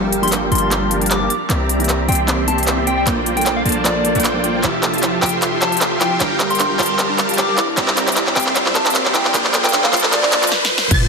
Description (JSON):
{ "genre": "future bass", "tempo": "153 BPM", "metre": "4/4", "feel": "swing 54% on 16ths, half-time", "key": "unclear", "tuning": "A4 = 440 Hz", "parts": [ { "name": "felt-muted upright piano", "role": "accompaniment", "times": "0.0-4.5 s", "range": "E3 to A4", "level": "-23 LUFS", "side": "right 2 dB", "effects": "sidechain pumping, digital delay" }, { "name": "shimmering ambient pad", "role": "sustained chords", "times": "0.0-10.5 s", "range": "C3 to E5", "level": "-29 LUFS", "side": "equal", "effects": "none" }, { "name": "supersaw chords", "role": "riff", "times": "0.0-11.1 s", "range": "F3 to C6", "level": "-20 LUFS", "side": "right 1 dB", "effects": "sidechain pumping, low-pass filter, digital delay" }, { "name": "warm 808-style bass", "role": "bass", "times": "0.0-11.1 s", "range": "F1 to C2", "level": "-25 LUFS", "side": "equal", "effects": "tube saturation, sidechain pumping" }, { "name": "big-room dance drum kit", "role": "drums", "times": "0.1-11.0 s", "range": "crash cymbal, handclaps, hi-hat, snare drum", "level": "-18 LUFS", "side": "equal", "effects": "overdrive" }, { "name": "soft struck synth lead", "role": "melody", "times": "0.2-10.5 s", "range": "D5 to D6", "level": "-22 LUFS", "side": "left 1 dB", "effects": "chorus, sidechain pumping, ping-pong delay" }, { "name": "thumb-piano-like synth pluck", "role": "arpeggios", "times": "4.6-11.0 s", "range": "D4 to F5", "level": "-28 LUFS", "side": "right 2 dB", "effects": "chorus, cassette tape, sidechain pumping, digital delay" }, { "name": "riser and sub drop", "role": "sound effects", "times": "6.0-11.1 s", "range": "none", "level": "-25 LUFS", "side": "equal", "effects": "none" }, { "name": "wide unison pluck", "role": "arpeggios", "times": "10.9-11.1 s", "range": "A6", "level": "-21 LUFS", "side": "right 1 dB", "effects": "sidechain pumping" }, { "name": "electronic kick drum", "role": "drums", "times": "10.9-11.0 s", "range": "none", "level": "-15 LUFS", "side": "equal", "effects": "overdrive" } ], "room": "wet digital room reverb, RT60 1.1 s, digital ambience", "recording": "dense, heavily limited modern master, high-pass filter, faint mains hum", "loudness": "-14 LUFS", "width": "side -4 dB against mid", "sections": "0.0-10.9 A section", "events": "build-up 0.0-10.9; drum fill 0.0-10.5, 10.5-10.9; filter sweep on supersaw synth 0.0-10.9; filter sweep 0.0-10.9; riser 6.0-10.9; impact 10.9", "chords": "0.0 Gm7; 1.3 C7; 3.1 Bbmaj7; 4.6 Fmaj7; 6.2 Gm7; 7.6 C7; 9.3 Bbmaj7" }